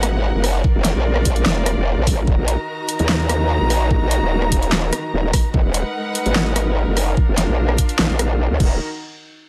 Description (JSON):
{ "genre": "heavy wobble dubstep", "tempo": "147 BPM", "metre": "4/4", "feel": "half-time", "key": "Eb harmonic minor", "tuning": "A4 = 442 Hz", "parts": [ { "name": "rich chamber string section", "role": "sustained chords", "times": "0.0-8.8 s", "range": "Eb3 to Bb5", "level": "-27 LUFS", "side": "equal", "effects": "sidechain pumping" }, { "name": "growl bass", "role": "bass", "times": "0.0-8.8 s", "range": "Eb1 to Eb2", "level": "-21 LUFS", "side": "equal", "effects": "chorus, overdrive" }, { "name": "big-room dance drum kit", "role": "drums", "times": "0.0-8.7 s", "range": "crash cymbal, handclaps, hi-hat, rim click, snare drum", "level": "-24 LUFS", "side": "equal", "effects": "overdrive, studio reverb" }, { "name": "electronic kick drum", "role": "drums", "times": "0.6-8.7 s", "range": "none", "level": "-20 LUFS", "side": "equal", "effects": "overdrive, studio reverb" } ], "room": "light reverb, digital ambience", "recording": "lossy compression artefacts", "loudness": "-18 LUFS", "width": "mono", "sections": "0.0-8.8 A section", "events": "none", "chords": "0.0 Abm7; 0.6 Bb; 2.3 Ebm; 5.5 Abm7; 7.2 Bb; 8.6 Ebm; 8.8 N.C." }